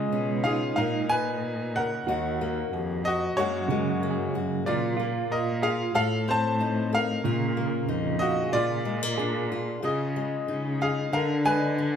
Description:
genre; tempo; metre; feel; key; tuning
acoustic folk-pop ballad; 92 BPM; 4/4; straight; unclear; A4 = 440 Hz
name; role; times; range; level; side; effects
bright concert grand piano; melody; 0.0-12.0 s; F4 to A5; -28 LUFS; equal; none
fingerpicked steel-string acoustic guitar; accompaniment; 0.0-12.0 s; Eb2 to A4; -30 LUFS; left 4 dB; none
clean electric guitar; arpeggios; 0.0-10.1 s; Db3 to F5; -31 LUFS; right 7 dB; tremolo
warm cello; bass; 0.0-12.0 s; Eb2 to D3; -31 LUFS; equal; none
room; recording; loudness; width
moderate large studio reverb, RT60 1.2 s; band playing live in one room; -24 LUFS; side -8 dB against mid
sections
0.0-12.0 A section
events
none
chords
0.0 Db; 0.8 Bbsus4; 2.1 Ebm; 3.4 Gbadd9; 4.7 Bb; 5.9 F7/A; 7.2 Bbsus4; 8.5 Bb; 9.8 Dbadd9; 11.1 Bb/D

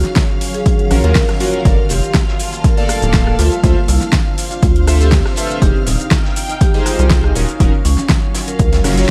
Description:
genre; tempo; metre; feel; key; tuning
deep house; 121 BPM; 4/4; swing 53% on 16ths; unclear; A4 = 440 Hz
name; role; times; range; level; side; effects
vibraphone with medium mallets; melody; 0.0-9.1 s; Db4 to Db5; -26 LUFS; equal; dub echo
deep dark ambient pad; sustained chords; 0.3-9.1 s; Eb3 to A5; -30 LUFS; equal; chorus, built-in reverb, sidechain pumping
rubbery square bass; bass; 0.0-9.1 s; D1 to Eb2; -16 LUFS; equal; tube saturation, sidechain pumping
deep house drum kit; drums; 0.0-9.1 s; hi-hat, rim click, shaker, snare drum; -22 LUFS; equal; overdrive
dark studio string section; texture; 0.0-9.1 s; Gb3 to A5; -30 LUFS; equal; sidechain pumping
string machine, violins; texture; 0.0-9.1 s; F5 to F6; -34 LUFS; equal; ensemble chorus, sidechain pumping
crunchy breakbeat drum kit; drums; 0.2-9.1 s; hi-hat, snare drum; -34 LUFS; equal; none
electronic kick drum; drums; 0.2-8.7 s; none; -17 LUFS; equal; overdrive
chorused polysynth; stabs; 0.9-9.1 s; Bb3 to F5; -24 LUFS; equal; sidechain pumping, dub echo
room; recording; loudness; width
light reverb, studio reverb; echo-heavy mix, vinyl crackle; -14 LUFS; mono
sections
0.0-9.1 A section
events
none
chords
0.0 Ebm9; 1.7 Gm9; 3.4 Dm9; 5.6 Fm9; 7.4 Ebm9

